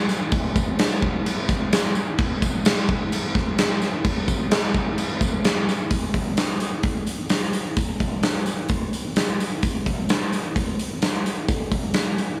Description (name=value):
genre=rock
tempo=129 BPM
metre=4/4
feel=straight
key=none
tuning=none
part: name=huge arena drum kit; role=drums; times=0.1-12.3 s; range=crash cymbal, hi-hat, kick drum, snare drum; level=-23 LUFS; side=equal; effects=none
part: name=tambourine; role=percussion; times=0.1-12.3 s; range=none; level=-40 LUFS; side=equal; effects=none
room=moderate plate reverb, RT60 1.0 s, small room ambience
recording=none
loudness=-23 LUFS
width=mono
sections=0.0-5.9 A section; 5.9-12.4 B section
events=none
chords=none